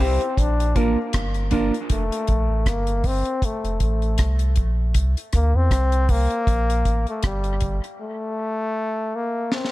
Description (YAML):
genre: dub reggae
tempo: 79 BPM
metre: 4/4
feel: swing 56% on 16ths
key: unclear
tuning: A4 = 440 Hz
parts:
  - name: clear trombone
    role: melody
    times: 0.0-9.7 s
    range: G3 to D4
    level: -26 LUFS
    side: left 2 dB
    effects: dub echo
  - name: electric guitar at the edge of break-up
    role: accompaniment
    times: 0.0-1.7 s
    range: Bb3 to C5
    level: -27 LUFS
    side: right 5 dB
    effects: dub echo
  - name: warm upright piano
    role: stabs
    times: 0.0-1.7 s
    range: C4 to Bb4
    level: -31 LUFS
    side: left 3 dB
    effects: dub echo
  - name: warm sub bass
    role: bass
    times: 0.0-7.8 s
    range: F1 to E2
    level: -21 LUFS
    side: equal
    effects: none
  - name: deep reggae drum kit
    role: drums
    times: 0.0-9.7 s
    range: hi-hat, kick drum, rim click, snare drum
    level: -23 LUFS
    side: equal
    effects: none
room: small room ambience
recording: none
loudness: -19 LUFS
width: side -17 dB against mid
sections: 0.0-9.7 A section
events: break 8.0-9.7; drum fill 9.5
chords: 0.4 Bb; 1.9 F; 4.9 N.C.; 6.5 Gmadd9; 8.0 N.C.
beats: 0.38 1.14 | 1.90 2.66 3.42 4.19 | 4.95 5.71 6.47 7.23 | 7.99 8.75 9.51